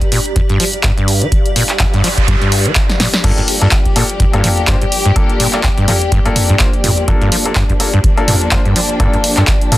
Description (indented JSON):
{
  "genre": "acid house",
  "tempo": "125 BPM",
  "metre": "4/4",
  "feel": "swing 57% on 16ths",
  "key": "G minor",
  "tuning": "A4 = 440 Hz",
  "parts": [
    { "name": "electronic kick drum", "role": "drums", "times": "0.0-9.6 s", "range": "none", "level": "-15 LUFS", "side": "equal", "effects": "studio reverb" },
    { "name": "punchy analog drum machine", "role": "drums", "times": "0.0-9.8 s", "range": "crash cymbal, handclaps, hi-hat, snare drum, toms", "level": "-16 LUFS", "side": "equal", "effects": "studio reverb" },
    { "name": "granular cloud pad", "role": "texture", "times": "0.0-9.8 s", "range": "G4 to G5", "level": "-23 LUFS", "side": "left 1 dB", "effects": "built-in reverb, sidechain pumping" },
    { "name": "acid bass, saw", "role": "riff", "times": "0.1-9.8 s", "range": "F2 to F3", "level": "-16 LUFS", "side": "equal", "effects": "overdrive, wide subtle chorus, tape echo" },
    { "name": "noise sweep", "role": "sound effects", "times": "1.7-3.2 s", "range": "none", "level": "-23 LUFS", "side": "right 3 dB", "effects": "none" },
    { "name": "warm studio string section", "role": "sustained chords", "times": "3.2-9.8 s", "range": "F3 to G4", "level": "-21 LUFS", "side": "left 2 dB", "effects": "vintage 12-bit sampler grit, sidechain pumping" },
    { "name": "bright baby grand piano", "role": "stabs", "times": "3.2-9.8 s", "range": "Bb3 to C5", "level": "-20 LUFS", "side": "left 3 dB", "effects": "tape echo" }
  ],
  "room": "light reverb",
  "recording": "dense, heavily limited modern master",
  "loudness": "-10 LUFS",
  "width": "side -16 dB against mid",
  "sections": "0.0-9.8 A section",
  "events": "filter sweep on acid bass 0.0-9.8; noise sweep 1.7-3.2; drum fill 2.9-3.2",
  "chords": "0.0 Gm7",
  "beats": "0.36 0.84 | 1.32 1.80 2.28 2.76 | 3.24 3.72 4.20 4.68 | 5.16 5.64 6.12 6.60 | 7.08 7.56 8.04 8.52 | 9.00 9.48"
}